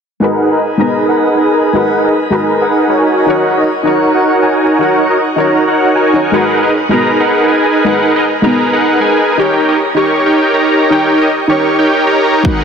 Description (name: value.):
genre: future bass.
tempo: 157 BPM.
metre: 4/4.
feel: swing 54% on 16ths, half-time.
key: G# minor.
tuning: A4 = 440 Hz.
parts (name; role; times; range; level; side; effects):
soft round pluck; accompaniment; 0.2-12.6 s; G#3 to A#5; -17 LUFS; left 2 dB; analog chorus, sidechain pumping, tape echo.
supersaw chords; riff; 0.2-12.6 s; D#4 to C#6; -10 LUFS; right 1 dB; sidechain pumping, low-pass filter, tape echo.
electronic kick drum; drums; 12.4-12.5 s; none; -12 LUFS; equal; overdrive.
room: moderate shimmer reverb, RT60 5.1 s.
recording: dense, heavily limited modern master.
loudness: -9 LUFS.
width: side -6 dB against mid.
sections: 0.2-12.6 A section.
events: filter sweep on supersaw synth 0.2-12.6.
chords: 0.2 G#m9; 3.1 D#m7; 6.3 G#m9; 9.4 D#7.